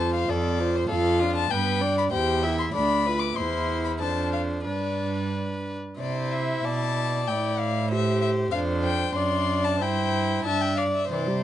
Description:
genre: quick classical-period movement for string quartet.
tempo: 88-99 BPM.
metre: 2/4.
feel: rubato.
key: C major.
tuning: A4 = 436 Hz.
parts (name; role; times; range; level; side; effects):
warm violin; melody; 0.0-11.4 s; C5 to D6; -29 LUFS; left 8 dB; none.
warm violin; second line; 0.0-11.4 s; F4 to E5; -30 LUFS; left 1 dB; none.
warm viola; accompaniment; 0.0-11.4 s; E3 to G4; -29 LUFS; right 1 dB; none.
rich cello; bass; 0.0-11.4 s; D2 to C3; -28 LUFS; right 3 dB; none.
room: light reverb.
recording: nothing above 10.5 kHz.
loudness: -23 LUFS.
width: side -11 dB against mid.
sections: 0.0-6.0 A section; 6.0-11.4 B section.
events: none.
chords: 0.0 F; 0.9 Dm/F; 1.5 G; 2.1 C/E; 2.7 Bdim/D; 3.4 C/E; 4.0 Dm7/F; 4.7 G; 6.0 C; 7.3 Am7; 8.5 Dm7/F; 9.2 D7/F#; 9.8 C/G; 10.4 G5.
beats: 0.29 | 0.91 1.51 | 2.13 2.75 | 3.37 4.01 | 4.67 5.33 | 6.00 6.65 | 7.28 7.91 | 8.53 9.15 | 9.80 10.45 | 11.10.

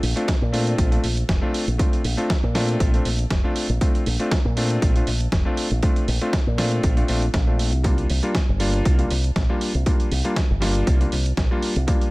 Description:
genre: nu-disco, nu disco.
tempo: 119 BPM.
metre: 4/4.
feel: swing 54% on 16ths.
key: Bb major.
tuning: A4 = 440 Hz.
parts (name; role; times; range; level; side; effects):
fingered electric bass with an envelope filter; bass; 0.0-11.8 s; F1 to Bb2; -22 LUFS; equal; tube saturation.
dusty soul sampler-style drum kit; drums; 0.0-12.1 s; hi-hat, snare drum; -28 LUFS; right 1 dB; studio reverb.
warm electric grand piano; accompaniment; 0.2-12.1 s; G3 to F4; -25 LUFS; left 1 dB; digital delay.
electronic kick drum; drums; 0.3-12.0 s; none; -21 LUFS; equal; overdrive, studio reverb.
room: digital ambience.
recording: none.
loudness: -18 LUFS.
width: side -22 dB against mid.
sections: 0.0-12.1 A section.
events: none.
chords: 0.0 Bbmaj9; 7.8 C7sus4.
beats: 0.28 0.79 1.29 | 1.79 2.30 2.80 3.31 | 3.81 4.32 4.82 5.32 | 5.83 6.33 6.84 7.34 | 7.84 8.35 8.85 9.36 | 9.86 10.37 10.87 11.37 | 11.88.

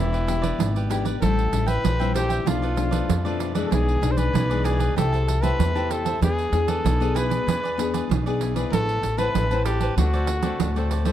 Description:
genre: samba and choro.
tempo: 96 BPM.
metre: 4/4.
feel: straight.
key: A minor.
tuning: A4 = 440 Hz.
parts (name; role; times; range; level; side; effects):
warm trumpet; melody; 0.0-10.9 s; E4 to C5; -27 LUFS; left 1 dB; none.
cavaquinho; accompaniment; 0.0-11.1 s; E4 to A5; -32 LUFS; right 6 dB; none.
nylon-string guitar; accompaniment; 0.0-11.1 s; A2 to B4; -28 LUFS; left 7 dB; none.
upright bass; bass; 0.0-11.1 s; E1 to F2; -24 LUFS; equal; none.
pandeiro; percussion; 0.1-11.1 s; none; -28 LUFS; right 9 dB; none.
room: little or no reverb.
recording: dry, close 1970s-style studio recording.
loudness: -20 LUFS.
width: side -11 dB against mid.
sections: 0.0-11.1 A section.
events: none.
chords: 0.0 Em7; 1.2 Am7; 2.5 Bm7b5; 3.7 E7/B; 5.0 Am7/C; 6.2 E7; 8.7 Amadd9; 10.0 D7.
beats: 0.59 | 1.22 1.84 2.47 3.09 | 3.72 4.34 4.97 5.60 | 6.22 6.85 7.47 8.10 | 8.72 9.35 9.97 10.60.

